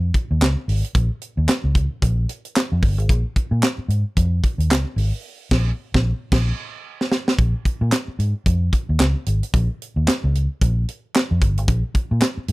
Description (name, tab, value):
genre	funk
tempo	112 BPM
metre	4/4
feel	swing 60% on 16ths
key	Bb dorian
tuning	A4 = 439 Hz
part	vintage muted fingered electric bass	bass	0.0-12.5 s	G1 to Bb2	-19 LUFS	equal	none
part	tight funk drum kit	drums	0.1-12.5 s	crash cymbal, handclaps, hi-hat, kick drum, snare drum	-20 LUFS	equal	none
room	little or no reverb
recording	dry, close 1970s-style studio recording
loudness	-18 LUFS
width	side -21 dB against mid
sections	0.0-7.4 A section; 7.4-12.5 B section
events	band accent 5.2-7.4; drum fill 6.3-7.4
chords	none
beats	0.41 | 0.95 1.48 2.02 2.56 | 3.10 3.63 4.17 4.71 | 5.24 5.78 6.32 6.85 | 7.39 7.93 8.46 9.00 | 9.54 10.07 10.61 11.14 | 11.68 12.22